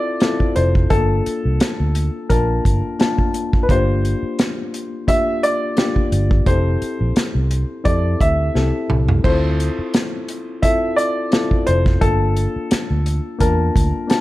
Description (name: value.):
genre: lush 1970s-style soul.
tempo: 86 BPM.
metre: 4/4.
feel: swing 54% on 16ths.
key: unclear.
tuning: A4 = 439 Hz.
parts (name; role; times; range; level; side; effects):
warm baby grand piano; melody; 0.0-14.2 s; A4 to E5; -22 LUFS; equal; none.
reed electric piano; accompaniment; 0.0-14.2 s; A3 to A5; -23 LUFS; left 3 dB; none.
vintage drum kit; drums; 0.2-14.2 s; crash cymbal, hi-hat, kick drum, snare drum, toms; -19 LUFS; equal; none.
vintage muted fingered electric bass; bass; 0.6-13.9 s; F1 to F2; -18 LUFS; equal; none.
room: small room ambience.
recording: none.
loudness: -15 LUFS.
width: side -17 dB against mid.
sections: 0.0-14.2 A section.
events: drum fill 8.5-9.2.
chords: 0.0 Dm7; 0.9 Gm9; 3.7 C9sus4/G; 6.5 Fmaj7; 9.2 Dm7; 12.0 Gm9.